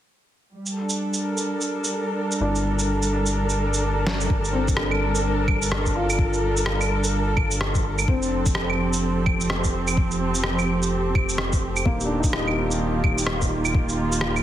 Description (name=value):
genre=future garage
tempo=127 BPM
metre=4/4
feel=swing 61% on 16ths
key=G minor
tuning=A4 = 439 Hz
part: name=muted studio string section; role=sustained chords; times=0.5-14.4 s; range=Eb3 to Bb4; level=-25 LUFS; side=right 1 dB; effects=sidechain pumping
part: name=electronic shaker, snare drum, rim click and claves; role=drums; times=0.7-14.4 s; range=none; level=-27 LUFS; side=right 1 dB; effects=none
part: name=warm upright piano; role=accompaniment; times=2.4-14.4 s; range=Bb3 to F4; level=-30 LUFS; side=left 2 dB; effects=sidechain pumping, dub echo
part: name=warm sub bass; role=bass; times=2.4-14.4 s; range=Eb1 to G1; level=-27 LUFS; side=equal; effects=sidechain pumping
part: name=electronic kick drum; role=drums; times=4.3-13.9 s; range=none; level=-22 LUFS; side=equal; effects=none
room=little or no reverb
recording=heavily compressed radio sound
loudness=-20 LUFS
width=side -12 dB against mid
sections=0.5-4.3 A section; 4.3-14.4 B section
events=drum fill 4.1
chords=0.5 Gmadd9; 4.3 Gm11; 8.1 Fadd9; 11.9 Ebmaj9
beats=| 0.52 0.99 1.47 1.94 | 2.41 2.88 3.36 3.83 | 4.30 4.77 5.25 5.72 | 6.19 6.66 7.14 7.61 | 8.08 8.55 9.03 9.50 | 9.97 10.44 10.91 11.39 | 11.86 12.33 12.80 13.28 | 13.75 14.22